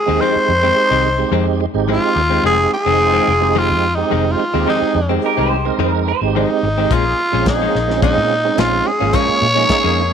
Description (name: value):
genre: straight-eighth soul blues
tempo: 108 BPM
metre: 4/4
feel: straight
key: F minor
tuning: A4 = 440 Hz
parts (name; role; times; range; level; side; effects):
- growling tenor saxophone; melody; 0.0-10.1 s; Eb4 to Db5; -16 LUFS; equal; none
- tonewheel organ; accompaniment; 0.1-10.1 s; Ab3 to G5; -20 LUFS; right 12 dB; overdrive, chorus vibrato, slow rotary speaker
- direct-recorded clean electric guitar; stabs; 0.1-10.0 s; F2 to Db4; -23 LUFS; left 14 dB; none
- vintage muted fingered electric bass; bass; 0.1-10.1 s; F1 to Bb2; -20 LUFS; left 2 dB; none
- warm horn section; sustained chords; 0.2-10.1 s; Ab3 to Ab4; -26 LUFS; left 13 dB; none
- electric guitar through a small old amp; second line; 5.3-6.3 s; Bb4 to C5; -22 LUFS; right 10 dB; lush chorus
- warm soul drum kit; drums; 6.9-9.8 s; hi-hat, kick drum, snare drum; -20 LUFS; left 1 dB; none
room: light reverb, studio reverb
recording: 1960s-style stereo with parts hard left and right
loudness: -13 LUFS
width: side -7 dB against mid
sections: 0.0-10.1 A section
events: none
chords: 0.0 Fm7; 6.9 Bbm7